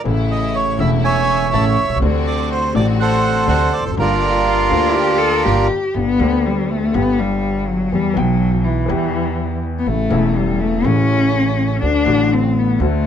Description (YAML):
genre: tango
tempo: 122 BPM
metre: 4/4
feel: rubato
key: G major from 6.0 s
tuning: A4 = 441 Hz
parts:
  - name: warm concert grand piano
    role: accompaniment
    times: 0.0-13.1 s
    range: E1 to G5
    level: -20 LUFS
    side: left 4 dB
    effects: none
  - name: rich symphonic string section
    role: stabs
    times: 0.0-5.7 s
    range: A3 to G4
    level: -27 LUFS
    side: right 2 dB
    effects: none
  - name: upright bass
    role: bass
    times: 0.1-13.1 s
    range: E1 to E2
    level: -21 LUFS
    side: right 3 dB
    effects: none
  - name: bandoneon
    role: melody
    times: 0.3-5.7 s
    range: D4 to A5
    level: -17 LUFS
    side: right 3 dB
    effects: none
  - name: dark cello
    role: second line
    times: 4.5-13.1 s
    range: E3 to A4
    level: -18 LUFS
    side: left 3 dB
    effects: none
room: moderate club reverb, RT60 0.7 s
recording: none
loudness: -14 LUFS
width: side -9 dB against mid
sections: 0.0-6.0 A section; 6.0-13.1 B section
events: cello solo 6.0-13.1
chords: 0.1 A; 2.0 D7; 4.0 Gm7; 6.0 G; 7.9 Em; 9.9 A; 11.8 D